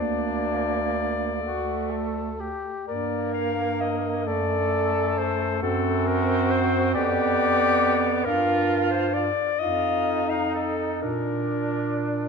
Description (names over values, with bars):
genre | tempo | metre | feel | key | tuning
classical, lyrical piece for single-reed quartet | 44 BPM (dotted quarters) | 6/8 | uneven beats, rubato | G minor, Bb major from 8.3 s | A4 = 441 Hz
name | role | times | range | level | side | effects
bright clarinet | melody | 0.0-12.3 s | A4 to F5 | -26 LUFS | left 8 dB | none
bright alto saxophone | second line | 0.0-12.3 s | A3 to F4 | -27 LUFS | right 7 dB | none
mellow tenor saxophone | accompaniment | 0.0-12.3 s | D4 to Bb4 | -29 LUFS | left 2 dB | none
clear bass clarinet | bass | 0.0-12.3 s | D2 to Bb2 | -29 LUFS | right 2 dB | none
room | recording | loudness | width
moderate concert hall reverb, RT60 2.0 s | minimal, uncompressed stereo recording | -22 LUFS | side -5 dB against mid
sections
0.0-12.3 A section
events
none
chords
0.0 Bb/D; 1.4 D; 2.9 Gm; 4.3 D7/F#; 5.6 F#dim; 7.0 G7/F; 8.3 Gm7; 9.6 F7; 11.0 Bb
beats
1.42 | 2.88 4.27 | 5.63 6.96 | 8.26 9.60 | 11.03